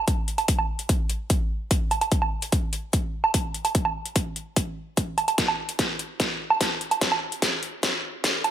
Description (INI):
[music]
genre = dubstep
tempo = 147 BPM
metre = 4/4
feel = half-time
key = none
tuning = none
[part]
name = dubstep drum kit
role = drums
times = 0.1-8.5 s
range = hi-hat, snare drum, woodblock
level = -24 LUFS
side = right 2 dB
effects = overdrive, high-pass filter on hats, high-pass filter on perc, high-pass filter on snare, high-pass filter on room
[part]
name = electronic kick drum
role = drums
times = 0.1-8.3 s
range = none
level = -25 LUFS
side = equal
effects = overdrive
[sound]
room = light reverb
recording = high-pass filter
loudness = -23 LUFS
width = side -10 dB against mid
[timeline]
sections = 0.0-8.5 A section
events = build-up 0.0-8.5; filter sweep 0.0-8.5; drum fill 5.4-8.5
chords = none